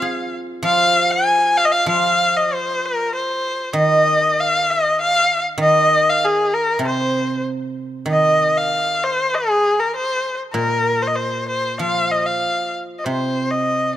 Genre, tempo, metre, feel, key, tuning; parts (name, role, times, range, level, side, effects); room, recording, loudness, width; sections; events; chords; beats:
chinese traditional; 97 BPM; 2/4; rubato; A4 = 440 Hz
clear erhu; melody; 0.0-13.9 s; Ab4 to Ab5; -16 LUFS; left 1 dB
guzheng; accompaniment; 0.0-14.0 s; Bb2 to Ab4; -22 LUFS; right 2 dB
light reverb; close, detailed microphones; -16 LUFS; side -12 dB against mid
0.0-8.1 A section; 8.1-14.0 A section
0.04 | 0.65 1.26 | 1.88 2.51 | 3.13 3.75 | 4.37 4.99 | 5.59 6.20 | 6.82 7.45 | 8.08 8.71 | 9.33 9.94 | 10.55 11.17 | 11.79 12.42 | 13.05 13.68